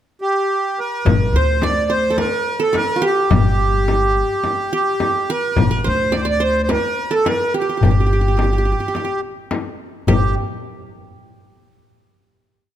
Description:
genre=Arabic maqam ensemble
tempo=106 BPM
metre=4/4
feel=straight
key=G maqam rast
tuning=A4 = 440 Hz
part: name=accordion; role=melody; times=0.2-10.3 s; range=G4 to D5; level=-19 LUFS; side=right 1 dB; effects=none
part: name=upright bass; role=bass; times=1.1-10.3 s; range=G1 to D2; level=-19 LUFS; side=equal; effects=none
part: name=darbuka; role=percussion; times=1.1-10.3 s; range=none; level=-24 LUFS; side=left 3 dB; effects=none
part: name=frame drum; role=percussion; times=1.1-10.3 s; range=none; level=-22 LUFS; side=left 4 dB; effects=none
part: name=qanun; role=second line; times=1.4-10.3 s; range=F#4-50c to D5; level=-23 LUFS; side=right 4 dB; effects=none
room=light reverb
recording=close, detailed microphones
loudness=-15 LUFS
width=side -11 dB against mid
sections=0.0-1.1 pickup bar; 1.1-10.1 A section; 10.1-12.3 final note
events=none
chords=none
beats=0.49 | 1.06 1.62 2.19 2.75 | 3.32 3.88 4.44 5.00 | 5.57 6.13 6.69 7.25 | 7.82 8.38 8.95 9.51 | 10.07

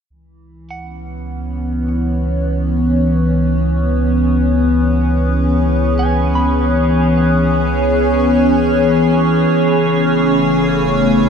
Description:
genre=ambient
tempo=free time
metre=none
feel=none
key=C# minor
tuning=A4 = 440 Hz
part: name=evolving wavetable pad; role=sustained chords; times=1.1-11.3 s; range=E3 to C#5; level=-14 LUFS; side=left 1 dB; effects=chorus, built-in reverb, phaser
part: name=warm sub bass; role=bass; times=0.1-11.3 s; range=F#1 to C#2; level=-19 LUFS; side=right 1 dB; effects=none
part: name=clean electric guitar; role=arpeggios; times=0.7-9.2 s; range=F#5 to B5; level=-28 LUFS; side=right 1 dB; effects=ping-pong delay
part: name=organ-like drone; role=drone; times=10.0-11.3 s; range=C#3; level=-24 LUFS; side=right 4 dB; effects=ensemble chorus, built-in reverb
room=wet huge ambient reverb, RT60 7.2 s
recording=none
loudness=-12 LUFS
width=side -7 dB against mid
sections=0.1-11.3 A section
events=fade-in on clean electric guitar 0.1-11.3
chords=0.1 C#m7; 9.5 F#m7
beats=free time

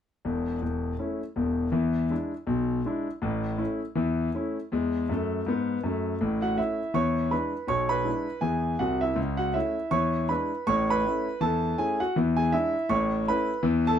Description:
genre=jazz, stride piano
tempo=161 BPM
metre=4/4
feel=swing 59% on 8ths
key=A major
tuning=A4 = 438 Hz
part: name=clear concert grand piano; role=solo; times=0.2-14.0 s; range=E1 to C#6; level=-24 LUFS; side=equal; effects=none
room=light reverb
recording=close, detailed microphones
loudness=-25 LUFS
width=side -9 dB against mid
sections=0.2-6.2 A section; 6.2-14.0 B section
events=none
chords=0.2 A/E; 1.7 E7; 3.2 A; 4.7 E; 6.2 A; 7.0 E7; 7.7 E7/B; 9.2 A/C#; 9.9 E7; 10.7 A; 12.2 E7; 12.9 A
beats=| 0.25 0.62 0.99 1.36 | 1.74 2.11 2.48 2.85 | 3.23 3.60 3.97 4.34 | 4.72 5.09 5.46 5.83 | 6.21 6.58 6.95 7.32 | 7.70 8.07 8.44 8.81 | 9.18 9.55 9.92 10.30 | 10.67 11.04 11.41 11.78 | 12.16 12.53 12.90 13.27 | 13.64

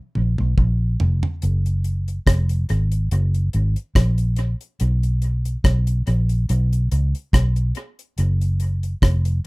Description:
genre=lovers rock reggae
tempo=71 BPM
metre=4/4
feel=swing 55% on 16ths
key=F# major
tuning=A4 = 440 Hz
part: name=vintage muted fingered electric bass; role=bass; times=0.2-9.4 s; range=F1 to C#2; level=-18 LUFS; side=equal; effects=none
part: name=deep reggae drum kit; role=drums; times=0.2-9.4 s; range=hi-hat, kick drum, rim click, toms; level=-20 LUFS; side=equal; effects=dub echo
room=little or no reverb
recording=rough home demo mix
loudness=-18 LUFS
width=side -26 dB against mid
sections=0.0-1.4 A section; 1.4-9.5 B section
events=drum fill 0.0-1.4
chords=none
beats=0.58 | 1.42 2.27 3.11 3.95 | 4.80 5.64 6.49 7.33 | 8.18 9.02

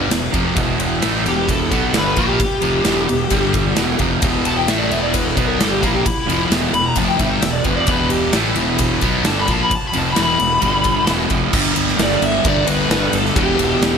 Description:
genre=hard rock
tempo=131 BPM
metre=4/4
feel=straight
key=E minor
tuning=A4 = 440 Hz
part: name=distorted electric guitar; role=riff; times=0.0-14.0 s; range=E2 to B3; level=-22 LUFS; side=right 12 dB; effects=distortion
part: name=sludgy distorted guitar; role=riff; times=0.0-14.0 s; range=E2 to B3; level=-22 LUFS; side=left 12 dB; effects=overdrive
part: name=fuzz fingered electric bass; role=bass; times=0.0-14.0 s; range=E1 to B1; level=-23 LUFS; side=equal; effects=overdrive
part: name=big rock drum kit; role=drums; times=0.1-13.9 s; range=crash cymbal, kick drum, ride cymbal, snare drum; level=-20 LUFS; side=equal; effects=gated reverb
part: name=smooth overdriven lead guitar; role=melody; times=1.3-14.0 s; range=E4 to B5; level=-21 LUFS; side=left 1 dB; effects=ping-pong delay
room=light reverb, small room ambience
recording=bright 1980s-style digital production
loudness=-14 LUFS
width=side -6 dB against mid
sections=0.0-11.5 A section; 11.5-14.0 B section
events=lead electric guitar solo 0.0-11.5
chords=0.0 Em; 3.3 G5; 3.8 Em; 10.6 G5; 11.1 E5; 11.5 G5; 13.4 Em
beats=0.10 | 0.56 1.02 1.48 1.94 | 2.39 2.85 3.31 3.77 | 4.22 4.68 5.14 5.60 | 6.05 6.51 6.97 7.43 | 7.88 8.34 8.80 9.26 | 9.71 10.17 10.63 11.09 | 11.54 12.00 12.46 12.91 | 13.37 13.82

